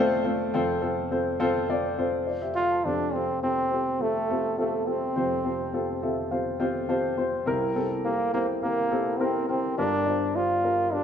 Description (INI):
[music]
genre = pop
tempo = 104 BPM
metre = 4/4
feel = straight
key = F major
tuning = A4 = 440 Hz
[part]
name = brilliant trombone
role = melody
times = 0.0-11.0 s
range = A3 to F4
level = -26 LUFS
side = right 1 dB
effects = none
[part]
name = dark upright piano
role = accompaniment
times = 0.0-11.0 s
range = F1 to C6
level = -26 LUFS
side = left 1 dB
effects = none
[sound]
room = wet recital hall reverb, RT60 1.4 s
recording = none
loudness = -24 LUFS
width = side -8 dB against mid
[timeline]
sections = 0.5-2.9 A section; 2.9-11.0 B section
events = upright piano fill 5.7-7.5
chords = 0.0 F; 2.9 Fadd9; 7.5 C7; 9.8 Gm7